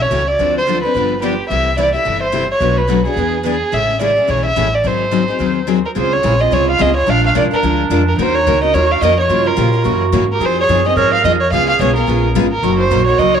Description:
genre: acoustic string swing (jazz manouche)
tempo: 216 BPM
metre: 4/4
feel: swing 57% on 8ths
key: Db major from 6.0 s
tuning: A4 = 438 Hz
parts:
  - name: warm violin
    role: melody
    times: 0.0-13.4 s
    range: G4 to F5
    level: -16 LUFS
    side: right 2 dB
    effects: none
  - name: picked steel-string acoustic guitar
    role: accompaniment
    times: 0.0-13.4 s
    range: B2 to Bb4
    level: -19 LUFS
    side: left 11 dB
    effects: none
  - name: picked steel-string acoustic guitar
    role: accompaniment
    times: 0.0-13.4 s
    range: B2 to B4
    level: -24 LUFS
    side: right 12 dB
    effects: none
  - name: upright bass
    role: bass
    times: 0.0-13.4 s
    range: Gb1 to Bb2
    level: -19 LUFS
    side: equal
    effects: none
  - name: growling clarinet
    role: second line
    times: 6.0-13.4 s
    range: D4 to Bb4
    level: -19 LUFS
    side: right 9 dB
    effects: none
room: moderate spring reverb, RT60 2.2 s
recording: 1960s-style stereo with parts hard left and right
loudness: -12 LUFS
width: side -8 dB against mid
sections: 0.0-6.0 A section; 6.0-13.4 B section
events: none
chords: 0.4 Dm7; 0.9 G7; 1.5 C6; 2.6 Bm7; 3.2 E7; 3.7 Amaj7; 4.8 G#7; 6.0 Dbmaj7; 7.1 Bb7; 8.2 Ebm7; 9.3 Gm7b5; 9.9 Gb9; 10.4 Fm7; 11.5 Db7; 12.6 Gb6

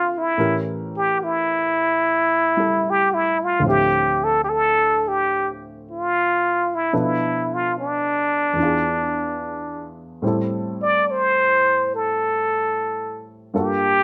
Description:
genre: jazz ballad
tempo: 73 BPM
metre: 4/4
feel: swing 68% on 8ths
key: unclear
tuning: A4 = 441 Hz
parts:
  - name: trumpet with plunger mute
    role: melody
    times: 0.0-14.0 s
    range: D4 to D5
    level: -21 LUFS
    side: equal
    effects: slapback echo
  - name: warm baby grand piano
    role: accompaniment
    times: 0.0-14.0 s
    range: D2 to E5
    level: -29 LUFS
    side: equal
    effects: none
room: little or no reverb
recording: recorded outdoors, with no room sound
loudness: -21 LUFS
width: mono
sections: 0.0-14.0 A section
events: none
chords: 0.4 A7b9; 3.6 Dm11; 6.9 Bm7b5; 8.6 E7b9; 10.2 Am7; 13.5 Gm9

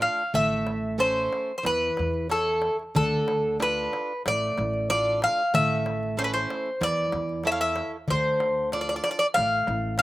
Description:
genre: greek folk, Greek bouzouki band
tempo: 93 BPM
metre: 4/4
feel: straight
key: unclear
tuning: A4 = 439 Hz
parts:
  - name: Greek bouzouki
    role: melody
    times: 0.0-10.0 s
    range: A4 to F5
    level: -24 LUFS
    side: equal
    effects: none
  - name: picked plugged-in swing-style acoustic guitar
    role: accompaniment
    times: 0.0-10.0 s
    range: D3 to C#5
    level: -33 LUFS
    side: right 4 dB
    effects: slapback echo
  - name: upright bass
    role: bass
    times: 0.0-10.0 s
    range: A1 to E2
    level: -33 LUFS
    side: left 1 dB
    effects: none
  - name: darbuka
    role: percussion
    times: 0.0-10.0 s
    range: none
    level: -32 LUFS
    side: left 1 dB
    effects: none
room: little or no reverb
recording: recorded outdoors, with no room sound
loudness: -23 LUFS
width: side -17 dB against mid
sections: 0.0-10.0 A section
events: speeding up 0.0-10.0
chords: 0.3 A; 2.9 Dm; 5.5 A; 8.1 Dm

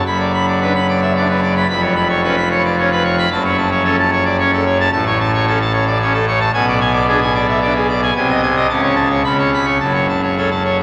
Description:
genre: classical, organ toccata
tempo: 111 BPM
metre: 3/4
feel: straight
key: F# minor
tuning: A4 = 440 Hz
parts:
  - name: pipe organ, full organ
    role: solo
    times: 0.0-10.8 s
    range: E#1 to B5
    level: -15 LUFS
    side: equal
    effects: none
room: wet cathedral reverb, RT60 5.0 s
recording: none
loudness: -15 LUFS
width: mono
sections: 0.0-10.8 A section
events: none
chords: 0.1 Bmadd11/F#; 1.7 C#7/E#; 3.3 F#m; 4.9 A; 6.5 G#dim/B; 8.1 G#/B#; 8.7 A/C#; 9.2 Bsus2/C#; 9.8 F#m

